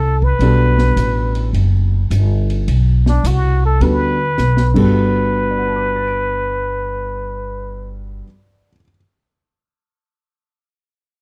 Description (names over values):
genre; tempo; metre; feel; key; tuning
jazz, small-group swing and bop; 106 BPM; 4/4; swing 67% on 8ths; G major; A4 = 440 Hz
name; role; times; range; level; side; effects
trumpet with plunger mute; melody; 0.0-8.0 s; D4 to B4; -22 LUFS; equal; none
upright bass; bass; 0.0-8.2 s; F#1 to D2; -18 LUFS; equal; none
open jazz drum kit; drums; 0.2-4.8 s; crash cymbal, hi-hat, kick drum, ride cymbal, snare drum; -29 LUFS; equal; none
warm baby grand piano; accompaniment; 0.4-9.0 s; G2 to D7; -22 LUFS; equal; none
room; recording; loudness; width
studio ambience; dry, close 1970s-style studio recording; -16 LUFS; mono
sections
0.0-4.9 A section; 4.9-7.2 B section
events
drum fill 4.4-4.9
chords
0.4 Gmaj9